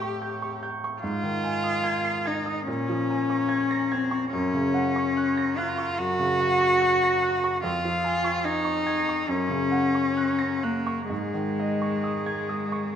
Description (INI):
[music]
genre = classical, romantic duo for cello and grand piano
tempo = 71 BPM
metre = 4/4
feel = uneven beats, rubato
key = unclear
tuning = A4 = 437 Hz
[part]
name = rich cello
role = melody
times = 0.0-13.0 s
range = Ab3 to G4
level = -24 LUFS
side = left 1 dB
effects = none
[part]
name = bright grand piano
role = accompaniment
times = 0.0-13.0 s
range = F2 to C7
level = -28 LUFS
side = right 1 dB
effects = none
[sound]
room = wet recital hall reverb, RT60 1.4 s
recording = none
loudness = -23 LUFS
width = side -8 dB against mid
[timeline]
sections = 0.0-13.0 A section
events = none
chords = 0.0 A7; 1.0 Ab; 2.7 Bbm7; 4.3 Gb; 7.6 Db/F; 9.3 Gb; 11.1 Absus4